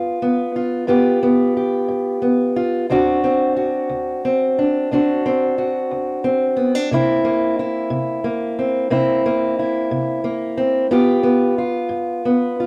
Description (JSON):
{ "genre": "blues", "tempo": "60 BPM (dotted quarters)", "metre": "12/8", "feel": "straight", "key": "G mixolydian", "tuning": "A4 = 439 Hz", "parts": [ { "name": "fingerpicked acoustic archtop guitar", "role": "solo", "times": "0.0-12.7 s", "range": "D2 to G4", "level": "-19 LUFS", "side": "equal", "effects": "none" } ], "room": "moderate large studio reverb, RT60 1.1 s", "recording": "band playing live in one room", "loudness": "-19 LUFS", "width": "mono", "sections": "0.0-12.7 A section", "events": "none", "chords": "0.0 G7; 2.9 D7; 6.9 C7; 10.9 G7" }